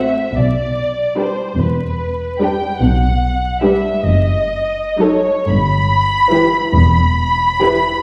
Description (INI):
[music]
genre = classical, slow romantic movement for string orchestra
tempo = 40-51 BPM (dotted quarters)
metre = 6/8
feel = rubato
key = unclear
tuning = A4 = 440 Hz
[part]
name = muted studio violin section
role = melody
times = 0.0-8.0 s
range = B4 to B5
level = -19 LUFS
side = equal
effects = none
[part]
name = muted studio violin section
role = second line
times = 0.0-8.0 s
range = F#4 to C5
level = -23 LUFS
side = equal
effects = none
[part]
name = muted studio viola section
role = accompaniment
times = 0.0-8.0 s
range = E3 to E4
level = -22 LUFS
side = equal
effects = none
[part]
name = muted studio cello section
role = bass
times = 0.0-7.8 s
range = E2 to B2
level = -22 LUFS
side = equal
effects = none
[part]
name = muted studio double bass section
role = bass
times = 0.0-7.8 s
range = E1 to B1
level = -20 LUFS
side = equal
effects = none
[sound]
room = wet scoring stage reverb, RT60 1.5 s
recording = heard from further back in the room, vinyl crackle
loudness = -15 LUFS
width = mono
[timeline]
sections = 0.0-8.0 A section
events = none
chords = 0.3 G/B; 1.6 Em7; 4.0 D#dim/F#; 5.5 Em/G; 6.7 Em